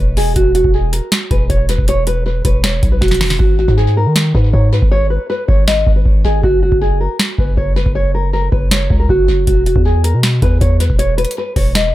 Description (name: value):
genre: hip hop, trap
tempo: 158 BPM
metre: 4/4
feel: half-time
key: unclear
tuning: A4 = 440 Hz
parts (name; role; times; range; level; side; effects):
- nylon-string guitar; melody; 0.0-11.9 s; F#4 to D#5; -17 LUFS; equal; tape echo
- long sustained 808-style bass; bass; 0.0-11.9 s; E1 to D#3; -15 LUFS; equal; none
- booming analog drum machine; drums; 0.2-11.8 s; hi-hat, kick drum, snare drum; -15 LUFS; equal; none
room: digital ambience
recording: echo-heavy mix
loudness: -11 LUFS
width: side -15 dB against mid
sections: 0.0-11.9 A section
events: drum fill 3.0-3.4; hi-hats muted 3.4-9.5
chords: 0.0 Esus2; 3.4 G#5; 6.4 F#5; 9.5 E5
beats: | 0.36 0.74 1.12 1.50 | 1.88 2.26 2.64 3.02 | 3.40 3.78 4.16 4.54 | 4.92 5.30 5.68 6.06 | 6.43 6.82 7.20 7.58 | 7.95 8.33 8.71 9.09 | 9.47 9.85 10.23 10.61 | 10.99 11.37 11.75